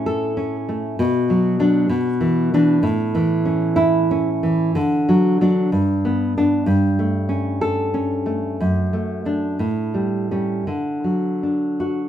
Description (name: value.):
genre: romantic piece for solo classical guitar.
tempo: 53-67 BPM (dotted quarters).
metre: 6/8.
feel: rubato.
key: unclear.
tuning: A4 = 439 Hz.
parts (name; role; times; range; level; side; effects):
nylon-string guitar; solo; 0.0-12.1 s; F#2 to A4; -17 LUFS; equal; none.
room: moderate large studio reverb, RT60 1.1 s.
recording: band playing live in one room.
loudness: -17 LUFS.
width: side -10 dB against mid.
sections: 0.0-12.1 A section.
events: none.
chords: 0.0 A; 1.0 Bm; 1.9 E5/B; 2.8 A; 4.7 D; 5.7 G; 6.7 A7/G; 8.6 D/F#; 9.6 A7; 10.7 D.